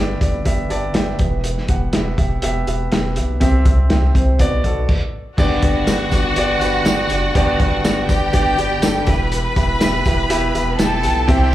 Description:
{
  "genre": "piano-driven pop",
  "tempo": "122 BPM",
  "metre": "4/4",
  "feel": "swing 56% on 16ths",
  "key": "unclear",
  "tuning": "A4 = 441 Hz",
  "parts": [
    { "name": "dark baby grand piano", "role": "accompaniment", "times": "0.0-11.5 s", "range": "G2 to A5", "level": "-21 LUFS", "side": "equal", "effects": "slapback echo" },
    { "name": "round analog bass", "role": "bass", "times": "0.0-11.5 s", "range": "E1 to C2", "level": "-20 LUFS", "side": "equal", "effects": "none" },
    { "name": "loose indie drum kit", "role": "drums", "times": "0.2-11.5 s", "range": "crash cymbal, hi-hat, kick drum, snare drum", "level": "-19 LUFS", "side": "equal", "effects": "none" },
    { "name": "rich studio violin section", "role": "second line", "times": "5.4-11.5 s", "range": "F#4 to B5", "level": "-20 LUFS", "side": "equal", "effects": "digital delay" },
    { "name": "tambourine", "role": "percussion", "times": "5.4-11.4 s", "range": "none", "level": "-35 LUFS", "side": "left 2 dB", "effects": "none" }
  ],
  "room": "light reverb",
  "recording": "live gig heard through the venue's PA, club reverb",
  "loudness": "-15 LUFS",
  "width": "side -14 dB against mid",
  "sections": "0.0-5.4 A section; 5.4-11.5 B section",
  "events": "grand piano fill 0.5-1.4; stop 4.9-5.4",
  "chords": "0.0 G; 1.2 Em; 3.4 C; 4.4 Bm; 5.4 G; 9.1 Em",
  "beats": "0.46 0.95 | 1.44 1.94 2.43 2.92 | 3.41 3.90 4.40 4.89 | 5.38 5.87 6.37 6.86 | 7.35 7.84 8.33 8.83 | 9.32 9.81 10.30 10.79 | 11.29"
}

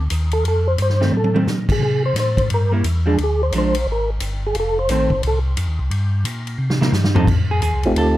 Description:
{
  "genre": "soul jazz organ trio",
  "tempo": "176 BPM",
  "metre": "4/4",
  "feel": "swing 64% on 8ths",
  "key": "F mixolydian",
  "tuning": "A4 = 443 Hz",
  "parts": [
    { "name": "tonewheel organ", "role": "bass", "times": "0.0-8.2 s", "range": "F1 to C3", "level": "-19 LUFS", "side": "equal", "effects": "chorus vibrato" },
    { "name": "swinging big-band drum kit", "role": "drums", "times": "0.1-8.1 s", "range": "crash cymbal, hi-hat, kick drum, ride cymbal, snare drum, toms", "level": "-23 LUFS", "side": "left 1 dB", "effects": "none" },
    { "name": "percussive tonewheel organ", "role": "melody", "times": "0.3-5.4, 7.9-8.2 s", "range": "A3 to C5", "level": "-20 LUFS", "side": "equal", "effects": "slow rotary speaker, chorus vibrato" },
    { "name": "vintage hollow-body jazz guitar", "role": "accompaniment", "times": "1.0-8.2 s", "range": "Eb3 to A4", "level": "-22 LUFS", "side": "right 2 dB", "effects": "none" }
  ],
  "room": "light reverb",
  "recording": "dark, warm production",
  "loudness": "-16 LUFS",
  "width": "side -15 dB against mid",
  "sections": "0.0-7.3 A section",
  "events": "tonewheel organ solo 0.0-7.3; drum fill 1.1-1.5, 6.6-7.3",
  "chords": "0.0 F7; 1.8 C; 3.2 Bb7; 4.5 F7; 5.9 Gm; 6.6 C7; 7.3 F7",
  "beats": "0.10 | 0.44 0.78 1.12 1.47 | 1.81 2.15 2.49 2.83 | 3.18 3.52 3.86 4.20 | 4.54 4.88 5.23 5.57 | 5.91 6.25 6.59 6.94 | 7.28 7.62 7.96"
}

